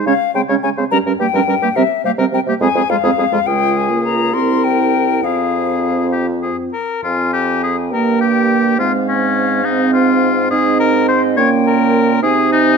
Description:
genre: quick classical-period movement for wind quintet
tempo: 70 BPM (dotted quarters)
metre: 6/8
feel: rubato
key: F minor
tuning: A4 = 437 Hz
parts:
  - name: clear oboe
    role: second line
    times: 0.0-12.8 s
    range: Db4 to Db5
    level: -18 LUFS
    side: left 5 dB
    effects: none
  - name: dark clarinet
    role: accompaniment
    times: 0.0-12.8 s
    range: Ab3 to F4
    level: -19 LUFS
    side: right 10 dB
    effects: none
  - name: mellow French horn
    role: accompaniment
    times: 0.0-12.8 s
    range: G3 to Eb4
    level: -20 LUFS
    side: equal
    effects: none
  - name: silver concert flute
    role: melody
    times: 0.1-12.8 s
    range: Eb5 to C6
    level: -20 LUFS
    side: left 11 dB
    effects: none
  - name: mellow bassoon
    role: bass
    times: 0.1-12.8 s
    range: C2 to Db3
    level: -21 LUFS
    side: right 4 dB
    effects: none
room: light reverb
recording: close, detailed microphones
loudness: -13 LUFS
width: side -5 dB against mid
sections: 0.0-7.0 A section; 7.0-12.8 A section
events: none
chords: 0.1 Db5; 0.9 Gdim; 1.8 C5; 2.6 Fm; 3.5 Db; 4.3 C7; 5.2 Fm; 7.9 Gm; 8.8 Fm/Ab; 10.5 Ab; 11.4 Bbm6; 12.2 Ab/C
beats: | 0.07 0.92 | 1.76 2.62 | 3.47 4.34 | 5.24 6.14 | 7.04 7.92 | 8.78 9.64 | 10.51 11.37 | 12.22

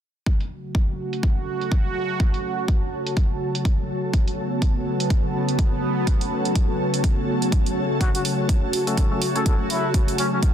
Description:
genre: bass house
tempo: 124 BPM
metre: 4/4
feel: swing 58% on 16ths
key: F# minor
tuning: A4 = 440 Hz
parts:
  - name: sweeping resonant pad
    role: sustained chords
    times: 0.3-10.5 s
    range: C#3 to F#4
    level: -26 LUFS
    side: right 1 dB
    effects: chorus, sidechain pumping
  - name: electronic hi-hat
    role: drums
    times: 0.3-10.5 s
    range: none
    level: -30 LUFS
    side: right 4 dB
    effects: low-pass filter on hats, low-pass filter on room
  - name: electronic kick drum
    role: drums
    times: 0.3-10.5 s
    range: none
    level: -21 LUFS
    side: equal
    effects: none
  - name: ethereal airy pad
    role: texture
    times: 1.2-10.5 s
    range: F#4 to A5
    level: -28 LUFS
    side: left 2 dB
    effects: ensemble chorus, built-in reverb, sidechain pumping
  - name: trumpet with plunger mute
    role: melody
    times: 8.0-10.4 s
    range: C#4 to A4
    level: -28 LUFS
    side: left 1 dB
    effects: digital delay
  - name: percussive organ stab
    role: stabs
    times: 8.9-9.5 s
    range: A3 to C#5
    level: -30 LUFS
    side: left 4 dB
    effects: chorus, sidechain pumping, digital delay
room: light reverb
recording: dense, heavily limited modern master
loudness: -20 LUFS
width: side -10 dB against mid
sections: 0.3-10.5 A section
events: none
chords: 0.3 F#m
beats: | 0.27 0.75 1.23 1.72 | 2.20 2.68 3.17 3.65 | 4.14 4.62 5.10 5.59 | 6.07 6.55 7.04 7.52 | 8.01 8.49 8.97 9.46 | 9.94 10.43

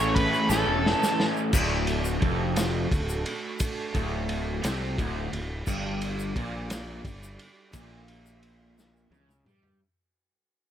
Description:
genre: psychedelic rock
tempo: 58 BPM (dotted quarters)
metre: 6/8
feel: straight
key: unclear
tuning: A4 = 439 Hz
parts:
  - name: octave-fuzz lead guitar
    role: melody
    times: 0.0-1.2 s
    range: A4 to C#5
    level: -29 LUFS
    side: right 1 dB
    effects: distortion, tape echo
  - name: warm chamber string section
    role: sustained chords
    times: 0.0-9.8 s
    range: C#3 to E5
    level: -39 LUFS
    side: right 5 dB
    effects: none
  - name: crunchy overdriven guitar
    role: riff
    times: 0.0-9.8 s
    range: D2 to A4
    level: -30 LUFS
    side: equal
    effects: harmonic tremolo
  - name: fuzz fingered electric bass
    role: bass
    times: 0.0-9.8 s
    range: D1 to G2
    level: -31 LUFS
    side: equal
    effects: overdrive
  - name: vintage drum kit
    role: drums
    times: 0.2-9.8 s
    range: crash cymbal, kick drum, ride cymbal, snare drum, toms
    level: -30 LUFS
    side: equal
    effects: none
  - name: tube shaker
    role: percussion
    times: 0.3-9.6 s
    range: none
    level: -39 LUFS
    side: left 7 dB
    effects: none
room: light reverb, small room reverb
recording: none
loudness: -25 LUFS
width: side -10 dB against mid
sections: 0.0-1.5 A section; 1.5-9.8 B section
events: drum fill 0.5-1.5, 8.8-9.8; fade-out 1.5-9.8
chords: 0.0 A; 1.5 D; 5.7 G5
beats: 0.51 | 1.54 2.57 | 3.60 4.63 | 5.67 6.70 | 7.73 8.76

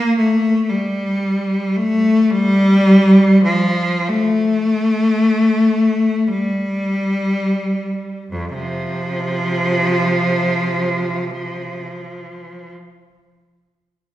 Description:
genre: classical, free, expressive piece for unaccompanied cello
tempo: free time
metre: none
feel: none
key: F major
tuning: A4 = 440 Hz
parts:
  - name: clear cello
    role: solo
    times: 0.0-12.7 s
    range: F2 to Bb3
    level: -15 LUFS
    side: left 1 dB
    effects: none
room: wet recital hall reverb, RT60 1.6 s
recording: recorded in a church or concert hall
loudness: -14 LUFS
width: side -14 dB against mid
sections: 0.0-8.3 A section; 8.3-13.3 B section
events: slowing down 0.0-8.3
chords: none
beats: free time

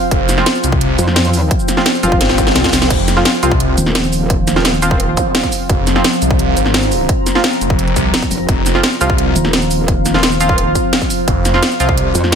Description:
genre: dark technical drum and bass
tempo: 172 BPM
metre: 4/4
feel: straight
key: unclear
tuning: A4 = 441 Hz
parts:
  - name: deep dark ambient pad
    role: sustained chords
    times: 0.0-12.4 s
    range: F3 to Bb5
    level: -18 LUFS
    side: right 1 dB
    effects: chorus, built-in reverb, sidechain pumping
  - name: band-passed chord stab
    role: stabs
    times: 0.0-11.9 s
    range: F3 to F4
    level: -19 LUFS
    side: right 2 dB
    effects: chorus, ping-pong delay
  - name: phased detuned saw bass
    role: bass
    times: 0.1-12.1 s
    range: F1 to C2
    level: -16 LUFS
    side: equal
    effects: phaser, tube saturation
  - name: drum and bass drum kit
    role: drums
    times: 0.1-12.4 s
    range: cabasa, crash cymbal, hi-hat, snare drum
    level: -16 LUFS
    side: equal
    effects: overdrive, studio reverb
  - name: electronic kick drum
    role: drums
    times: 0.1-12.0 s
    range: none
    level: -18 LUFS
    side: equal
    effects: studio reverb
  - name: metallic wobble bass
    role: bass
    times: 1.0-5.2, 8.3-12.4 s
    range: Eb1 to F2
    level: -16 LUFS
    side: equal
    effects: chorus
  - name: swell and zap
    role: sound effects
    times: 2.4-2.9, 5.2-5.3 s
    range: none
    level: -22 LUFS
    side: left 2 dB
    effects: none
room: light reverb, digital ambience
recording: none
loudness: -11 LUFS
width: side -7 dB against mid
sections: 0.0-12.4 A section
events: drum fill 2.2-2.9; swell 2.4-2.9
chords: 0.0 F5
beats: | 0.11 0.46 0.81 1.16 | 1.51 1.86 2.21 2.56 | 2.90 3.25 3.60 3.95 | 4.30 4.65 5.00 5.35 | 5.70 6.04 6.39 6.74 | 7.09 7.44 7.79 8.14 | 8.49 8.84 9.18 9.53 | 9.88 10.23 10.58 10.93 | 11.28 11.63 11.97 12.32

